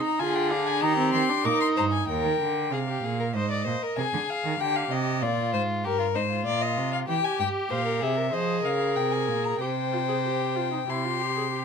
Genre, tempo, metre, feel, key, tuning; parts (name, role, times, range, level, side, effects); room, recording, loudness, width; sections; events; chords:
classical, baroque-style fugue for string quartet; 96 BPM; 4/4; straight; Eb major; A4 = 440 Hz
warm violin; melody; 0.0-11.6 s; Bb4 to D6; -28 LUFS; left 8 dB
warm viola; accompaniment; 0.0-2.1, 7.1-11.6 s; C4 to Ab4; -29 LUFS; right 2 dB
warm violin; second line; 0.2-11.6 s; Eb4 to D5; -30 LUFS; equal
rich cello; bass; 0.2-11.6 s; Eb2 to F3; -30 LUFS; right 6 dB
light reverb; minimal, uncompressed stereo recording; -24 LUFS; side -6 dB against mid
0.0-2.1 A section; 2.1-11.6 B section
0.0 Bb7; 0.8 Eb; 3.3 Ab; 4.6 Dm7b5; 5.8 Gm; 7.1 C; 8.3 Fm; 9.6 Csus4; 10.9 C